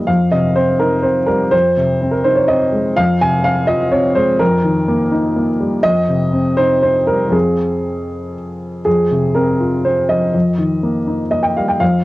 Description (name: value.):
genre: neoclassical minimalist piano.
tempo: 124 BPM.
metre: 3/4.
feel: rubato.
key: F minor.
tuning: A4 = 444 Hz.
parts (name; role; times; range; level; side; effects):
warm upright piano; solo; 0.0-12.0 s; F2 to Ab5; -13 LUFS; equal; none.
room: moderate booth ambience, RT60 0.2 s.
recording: home recording on cassette.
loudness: -13 LUFS.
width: side -18 dB against mid.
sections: 0.0-8.9 A section; 8.9-12.0 A section.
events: none.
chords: 0.1 Cm/F; 1.5 Ab/F; 3.0 Fm; 4.4 Eb/F; 5.8 Cm/F; 7.3 Fm; 10.3 Eb/F.